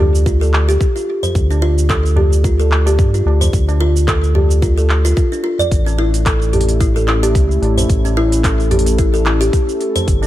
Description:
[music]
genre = organic downtempo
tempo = 110 BPM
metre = 4/4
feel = swing 56% on 16ths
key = unclear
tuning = A4 = 440 Hz
[part]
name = kalimba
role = arpeggios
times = 0.0-10.3 s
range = C#4 to D5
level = -18 LUFS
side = equal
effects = tape echo
[part]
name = round analog bass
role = bass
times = 0.0-10.3 s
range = G1 to G2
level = -14 LUFS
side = equal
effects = sidechain pumping
[part]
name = tabla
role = percussion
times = 0.0-10.3 s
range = none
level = -24 LUFS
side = right 1 dB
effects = none
[part]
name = organic electronic drum kit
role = drums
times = 0.2-10.3 s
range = handclaps, hi-hat, shaker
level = -23 LUFS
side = right 1 dB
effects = none
[part]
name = electronic kick drum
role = drums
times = 0.3-10.2 s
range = none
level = -16 LUFS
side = equal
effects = none
[part]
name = warm analog pad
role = sustained chords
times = 5.7-10.3 s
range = G3 to A4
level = -23 LUFS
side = equal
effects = chorus, sidechain pumping
[sound]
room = digital ambience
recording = none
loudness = -12 LUFS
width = side -14 dB against mid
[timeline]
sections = 0.0-10.3 A section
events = none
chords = 0.0 Dm; 5.7 A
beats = 0.26 0.81 | 1.35 1.90 2.44 2.99 | 3.53 4.08 4.62 5.17 | 5.71 6.26 6.81 7.35 | 7.90 8.44 8.99 9.53 | 10.08

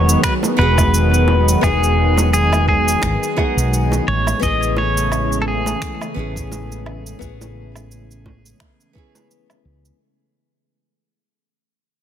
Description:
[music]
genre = sunset chillout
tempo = 86 BPM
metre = 4/4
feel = swing 56% on 16ths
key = unclear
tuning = A4 = 439 Hz
[part]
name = pedal steel guitar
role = melody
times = 0.0-9.3 s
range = G#4 to D#5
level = -20 LUFS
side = equal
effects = ping-pong delay
[part]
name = nylon-string guitar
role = accompaniment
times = 0.0-10.0 s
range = B3 to G#4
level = -26 LUFS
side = moving between left 10 dB and right 6 dB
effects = auto-pan, ping-pong delay
[part]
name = lush unison pad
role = sustained chords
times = 0.0-10.0 s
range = C#3 to B3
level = -22 LUFS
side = equal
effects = chorus
[part]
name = woody fretless electric bass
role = bass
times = 0.0-9.9 s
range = E1 to C#2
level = -19 LUFS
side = equal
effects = tube saturation
[part]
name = electronic cabasa, finger snaps and woodblock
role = drums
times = 0.1-10.0 s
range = none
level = -25 LUFS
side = right 3 dB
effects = overdrive, soft clipping on snare
[part]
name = electronic kick drum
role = drums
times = 0.2-9.1 s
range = none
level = -22 LUFS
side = equal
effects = none
[part]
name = bongos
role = percussion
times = 0.4-9.6 s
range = none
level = -28 LUFS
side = right 3 dB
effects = none
[sound]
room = light reverb, digital ambience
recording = dense, heavily limited modern master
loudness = -14 LUFS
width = side -10 dB against mid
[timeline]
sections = 0.0-10.0 A section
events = fade-out 0.0-10.0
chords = 0.0 Emaj9; 4.1 Amaj7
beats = 0.23 0.93 | 1.63 2.33 3.03 3.72 | 4.42 5.12 5.82 6.51 | 7.21 7.91 8.61 9.30

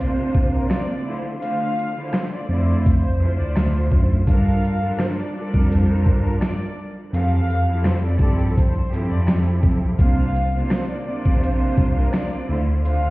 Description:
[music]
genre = hip hop, boom-bap hip-hop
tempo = 84 BPM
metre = 4/4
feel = swing 55% on 16ths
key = D minor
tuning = A4 = 441 Hz
[part]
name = warm studio violin section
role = melody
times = 0.0-13.1 s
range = Bb4 to F5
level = -30 LUFS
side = left 1 dB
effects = high-pass filter, low-pass filter
[part]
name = clear studio string section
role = accompaniment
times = 0.0-13.1 s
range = C3 to C5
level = -24 LUFS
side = right 1 dB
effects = cassette tape, high-pass filter, low-pass filter
[part]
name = boom bap sampler-style drum kit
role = drums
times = 0.0-13.0 s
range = hi-hat, kick drum, rim click, snare drum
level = -20 LUFS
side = equal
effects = none
[part]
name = mellow tine electric piano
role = bass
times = 2.5-13.1 s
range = Bb1 to G2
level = -20 LUFS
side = equal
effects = medium stereo tremolo
[part]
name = tambourine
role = percussion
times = 10.7-12.3 s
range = none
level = -62 LUFS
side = left 4 dB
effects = none
[sound]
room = small room ambience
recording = heard muffled through a wall, stone room reverb, vinyl crackle, EQ, nothing above 11.0 kHz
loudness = -18 LUFS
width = side -20 dB against mid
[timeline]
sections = 0.0-13.1 A section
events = break 0.0-1.4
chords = 0.0 C7sus4; 1.1 Dm7; 4.3 Gm7; 7.1 Fmaj7; 10.0 C7sus4; 12.5 Dm7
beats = 0.70 | 1.42 2.13 2.85 3.56 | 4.27 4.99 5.70 6.42 | 7.13 7.84 8.56 9.27 | 9.99 10.70 11.42 12.13 | 12.85

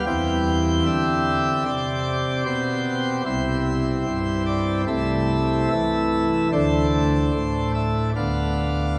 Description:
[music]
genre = classical, chorale-style piece for pipe organ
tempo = 74 BPM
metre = 4/4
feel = rubato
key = C major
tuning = A4 = 439 Hz
[part]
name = pipe organ, plenum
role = solo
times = 0.0-9.0 s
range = C2 to G5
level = -22 LUFS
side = equal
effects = none
[sound]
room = wet cathedral reverb, RT60 5.5 s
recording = none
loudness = -22 LUFS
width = mono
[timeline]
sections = 0.0-9.0 A section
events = none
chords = 0.1 C/E; 3.3 C; 4.9 Am/C; 6.5 D5; 8.2 Bdim/D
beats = | 0.07 0.86 1.66 2.46 | 3.26 4.06 4.88 5.71 | 6.53 7.34 8.16

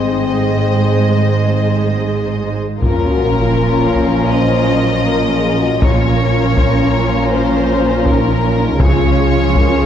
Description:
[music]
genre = cinematic, epic orchestral film score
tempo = 80 BPM (dotted quarters)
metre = 12/8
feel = straight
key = Bb minor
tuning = A4 = 439 Hz
[part]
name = warm symphonic violin section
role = melody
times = 0.0-9.9 s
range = Bb4 to Eb5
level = -21 LUFS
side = left 4 dB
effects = none
[part]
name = warm symphonic violin section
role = second line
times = 0.0-9.9 s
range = F4 to Eb5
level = -22 LUFS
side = left 3 dB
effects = none
[part]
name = rich symphonic viola section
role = accompaniment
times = 0.0-9.9 s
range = F3 to Ab4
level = -21 LUFS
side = equal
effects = none
[part]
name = mellow French horn section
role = sustained chords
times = 0.0-9.9 s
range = C4 to C5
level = -21 LUFS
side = left 4 dB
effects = none
[part]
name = dark symphonic double bass section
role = bass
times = 0.0-9.9 s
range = Ab1 to Db2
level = -19 LUFS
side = right 3 dB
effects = none
[part]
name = rich symphonic cello section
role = bass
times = 0.0-9.9 s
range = Ab2 to Db3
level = -19 LUFS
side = right 3 dB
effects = none
[part]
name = warm trombone section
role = sustained chords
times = 2.8-9.9 s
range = F3 to Db4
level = -22 LUFS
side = left 1 dB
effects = none
[part]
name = solo taiko drums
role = drums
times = 2.8-9.9 s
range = none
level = -17 LUFS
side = left 1 dB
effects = none
[part]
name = sub drop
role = sound effects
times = 2.8-5.8 s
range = none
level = -23 LUFS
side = left 1 dB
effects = none
[sound]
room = moderate scoring stage reverb, RT60 1.8 s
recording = dark, warm production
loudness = -12 LUFS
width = side -9 dB against mid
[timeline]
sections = 0.0-2.8 A section; 2.8-9.9 A section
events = impact 2.8-5.8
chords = 0.0 Ab; 2.8 Bbm; 8.8 Db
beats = 0.57 1.32 2.07 | 2.82 3.57 4.32 5.07 | 5.81 6.56 7.31 8.05 | 8.80 9.55

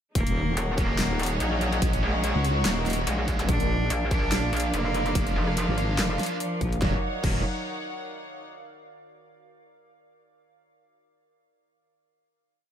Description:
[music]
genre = heavy wobble dubstep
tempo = 144 BPM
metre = 4/4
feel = swing 55% on 16ths, half-time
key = Eb minor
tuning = A4 = 440 Hz
[part]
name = bright cello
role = melody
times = 0.2-7.4 s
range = F3 to D4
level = -32 LUFS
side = equal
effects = ping-pong delay
[part]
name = evolving wavetable pad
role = sustained chords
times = 0.9-7.0 s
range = Bb4 to D6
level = -36 LUFS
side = right 1 dB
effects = chorus, built-in reverb, vintage 12-bit sampler grit, sidechain pumping
[part]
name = wobble bass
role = bass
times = 0.2-7.4 s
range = Eb1 to Db2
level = -27 LUFS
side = equal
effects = chorus, overdrive
[part]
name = dubstep drum kit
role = drums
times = 0.2-7.3 s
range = crash cymbal, handclaps, hi-hat, rim click, snare drum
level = -31 LUFS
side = equal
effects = none
[part]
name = electronic kick drum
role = drums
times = 0.2-7.3 s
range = none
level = -28 LUFS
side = equal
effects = none
[part]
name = dark studio string section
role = texture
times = 0.2-8.4 s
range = D4 to Gb5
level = -34 LUFS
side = equal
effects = sidechain pumping
[part]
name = metallic wobble bass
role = bass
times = 0.6-6.2 s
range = Eb1 to Bb1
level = -27 LUFS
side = equal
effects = chorus, overdrive
[part]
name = tight distorted guitar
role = stabs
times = 0.8-7.4 s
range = Bb3 to Gb4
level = -35 LUFS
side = right 3 dB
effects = distortion
[part]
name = zap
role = sound effects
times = 3.4-3.5 s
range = none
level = -37 LUFS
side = equal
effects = none
[sound]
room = digital ambience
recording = none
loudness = -23 LUFS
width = side -9 dB against mid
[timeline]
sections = 0.2-6.8 drop; 6.8-8.5 final chord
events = drop 0.2-6.8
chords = 0.2 Ebm7; 3.5 Bb; 6.8 Ebm7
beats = | 0.15 0.57 0.99 1.40 | 1.82 2.24 2.65 3.07 | 3.49 3.90 4.32 4.74 | 5.15 5.57 5.99 6.40 | 6.82 7.24 7.65 8.07

